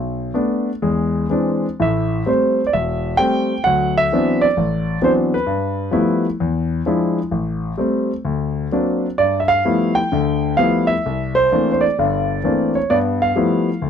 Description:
solo jazz; 130 BPM; 4/4; swing 66% on 8ths, rubato; G mixolydian; A4 = 439 Hz
warm concert grand piano; solo; 0.0-13.9 s; E1 to G5; -16 LUFS; equal
light reverb; -16 LUFS; side -8 dB against mid
0.0-9.2 A section; 9.2-13.9 A section
0.0 Bm7; 0.8 Eaug7; 1.8 Am7; 3.7 D13; 5.5 G13; 6.4 E7b9; 7.3 Am7; 8.2 Daug7; 9.2 G13; 11.1 C13; 12.9 G13

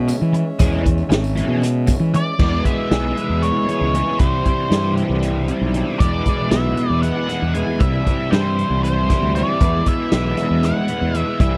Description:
psychedelic rock; 233 BPM (eighths); 7/8; straight; E mixolydian; A4 = 438 Hz
pedal harmonium; sustained chords; 0.0-11.6 s; G3 to E5; -30 LUFS; equal
fuzz fingered electric bass; bass; 0.0-11.6 s; G#1 to E3; -23 LUFS; equal; overdrive
overdriven electric guitar; riff; 0.1-11.6 s; E2 to G#4; -24 LUFS; equal; rotary speaker
vintage drum kit; drums; 0.1-11.5 s; crash cymbal, hi-hat, kick drum, snare drum; -21 LUFS; equal
tambourine; percussion; 0.1-2.0 s; -41 LUFS; equal
octave-fuzz lead guitar; melody; 2.2-11.6 s; C5 to G#5; -26 LUFS; equal; wah, distortion, tape echo
little or no reverb; dry, close 1970s-style studio recording; -18 LUFS; mono
0.0-2.4 A section; 2.4-11.6 B section
0.0 C#m7; 2.4 E; 4.2 C; 6.0 E; 7.8 C; 9.6 E

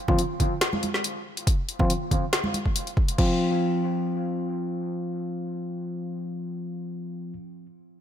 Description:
deep dubstep; 140 BPM; 4/4; swing 53% on 16ths, half-time; A4 = 440 Hz
tine electric piano; stabs; 0.1-7.3 s; F3 to F4; -28 LUFS; left 1 dB; low-pass filter, dub echo
electronic kick drum; drums; 0.1-3.3 s; -24 LUFS; equal
congas; percussion; 0.1-2.6 s; -32 LUFS; right 2 dB; dub echo
deep house drum kit; drums; 0.2-3.3 s; crash cymbal, hi-hat, snare drum; -28 LUFS; left 1 dB
light reverb; -24 LUFS; side -10 dB against mid
0.0-3.2 A section; 3.2-6.6 B section
0.0 F5

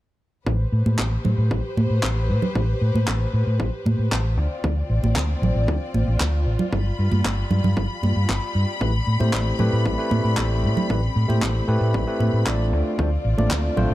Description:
nu-disco, nu disco; 115 BPM; 4/4; straight; A minor; A4 = 440 Hz
warm studio string section; sustained chords; 0.5-13.9 s; G3 to B5; -30 LUFS; left 3 dB; sidechain pumping
hollow-body short-scale fingered electric bass; bass; 0.5-13.9 s; G1 to A2; -21 LUFS; equal
electronic kick drum; drums; 0.5-13.6 s; -28 LUFS; equal; overdrive, high-pass filter on kick, high-pass filter on room
congas; percussion; 0.9-13.9 s; -28 LUFS; right 3 dB
handclaps; drums; 1.0-13.6 s; -30 LUFS; left 1 dB
tine electric piano; accompaniment; 8.8-13.9 s; A3 to D5; -26 LUFS; equal; sidechain pumping, digital delay
little or no reverb; dark, warm production; -19 LUFS; side -15 dB against mid
0.5-13.9 A section
filter sweep on fingered electric bass 0.5-13.9
0.5 Am9; 4.4 Dm7; 6.7 G7; 8.8 Am9; 12.7 Dm7

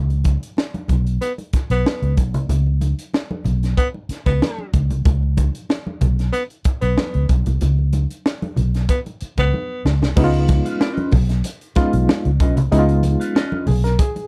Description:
funk; 94 BPM; 4/4; straight; A4 = 443 Hz
vintage muted fingered electric bass; bass; 0.0-14.0 s; Cb2 to Db2; -20 LUFS; equal
crisp fusion drum kit; drums; 0.1-14.3 s; crash cymbal, hi-hat, kick drum, snare drum; -22 LUFS; equal
congas; percussion; 0.1-14.3 s; -29 LUFS; equal
breathy baritone saxophone; second line; 1.2-9.8 s; Cb4; -25 LUFS; equal
clean electric guitar; accompaniment; 10.2-14.0 s; Db4 to F5; -27 LUFS; equal; wah
barky reed electric piano; stabs; 10.2-14.3 s; Ab3 to Bb4; -23 LUFS; equal; overdrive, fast tremolo
little or no reverb; -19 LUFS; mono
0.0-10.2 A section; 10.2-14.3 B section
drum fill 9.5-10.2; reed electric piano fill 13.4-14.3
0.0 Cbsus2; 10.2 Db9

